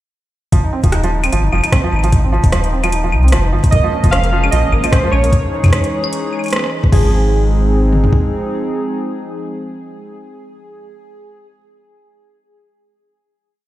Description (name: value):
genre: IDM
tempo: 150 BPM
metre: 4/4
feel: swing 56% on 16ths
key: Ab major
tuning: A4 = 440 Hz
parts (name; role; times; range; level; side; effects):
- felt-muted upright piano; arpeggios; 0.5-7.1 s; F3 to Eb4; -20 LUFS; right 2 dB; ping-pong delay
- warm sub bass; bass; 0.5-8.1 s; Eb1 to C2; -14 LUFS; equal; none
- electro analog drum machine; drums; 0.5-7.0 s; claves, crash cymbal, hi-hat, rim click; -22 LUFS; left 1 dB; overdrive, ping-pong delay
- glitchy drum kit; drums; 0.5-8.2 s; kick drum, toms; -12 LUFS; equal; overdrive
- warbly lo-fi synth keys; melody; 3.7-11.5 s; Ab4 to F5; -22 LUFS; right 1 dB; chorus, digital delay
- hollow soft pad; sustained chords; 3.7-10.9 s; Fb3 to Ab4; -21 LUFS; equal; chorus
room: little or no reverb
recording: played on a big sound system in a bare room, stone room reverb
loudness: -12 LUFS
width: side -15 dB against mid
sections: 0.5-6.9 groove; 6.9-10.1 final chord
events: band accent 6.6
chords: 0.5 Ab6; 3.7 Bbm7; 5.3 Dbmadd9; 6.9 Ab6